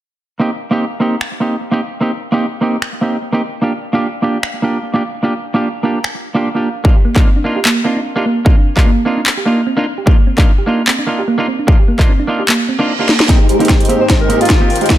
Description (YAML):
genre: future bass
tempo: 149 BPM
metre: 4/4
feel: swing 55% on 16ths, half-time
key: C minor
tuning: A4 = 442 Hz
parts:
  - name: semi-hollow electric guitar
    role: accompaniment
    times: 0.4-15.0 s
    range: Bb3 to G4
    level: -17 LUFS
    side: right 1 dB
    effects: sidechain pumping, tape echo
  - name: trap drum kit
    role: drums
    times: 1.2-15.0 s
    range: finger snaps, handclaps, hi-hat, snare drum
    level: -17 LUFS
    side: left 1 dB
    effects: none
  - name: electronic kick drum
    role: drums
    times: 6.8-15.0 s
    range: none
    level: -10 LUFS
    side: equal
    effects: none
  - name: thumb-piano-like synth pluck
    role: arpeggios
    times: 7.0-13.2 s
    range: Bb3 to G4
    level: -18 LUFS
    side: right 2 dB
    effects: chorus, sidechain pumping, tape echo
  - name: reverse cymbal and riser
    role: sound effects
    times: 12.7-15.0 s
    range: none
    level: -24 LUFS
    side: right 4 dB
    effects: none
  - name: clear symphonic string section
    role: sustained chords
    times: 13.3-15.0 s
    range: Ab2 to Bb4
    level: -24 LUFS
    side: left 2 dB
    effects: sidechain pumping
  - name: supersaw chords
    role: riff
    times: 13.3-15.0 s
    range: Ab3 to G5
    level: -16 LUFS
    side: equal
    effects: phaser, cassette tape, sidechain pumping, low-pass filter
  - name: breathy alto saxophone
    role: melody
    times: 14.0-15.0 s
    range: F4 to C5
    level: -16 LUFS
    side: equal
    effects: sidechain pumping, ping-pong delay
room: light reverb, digital ambience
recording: none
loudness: -12 LUFS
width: side -13 dB against mid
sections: 0.4-13.3 A section; 13.3-15.0 B section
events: reverse cymbal 12.7-13.3; drum fill 13.1, 13.3-15.0; build-up 13.3-15.0; filter sweep on supersaw synth 13.3-15.0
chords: 0.4 Eb6/Bb; 3.4 Bb6; 6.8 Cm11; 13.3 Abmaj7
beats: | 0.41 0.81 1.21 1.61 | 2.02 2.42 2.82 3.22 | 3.63 4.03 4.43 4.83 | 5.24 5.64 6.04 6.45 | 6.85 7.25 7.65 8.06 | 8.46 8.86 9.26 9.67 | 10.07 10.47 10.88 11.28 | 11.68 12.08 12.49 12.89 | 13.29 13.69 14.10 14.50 | 14.90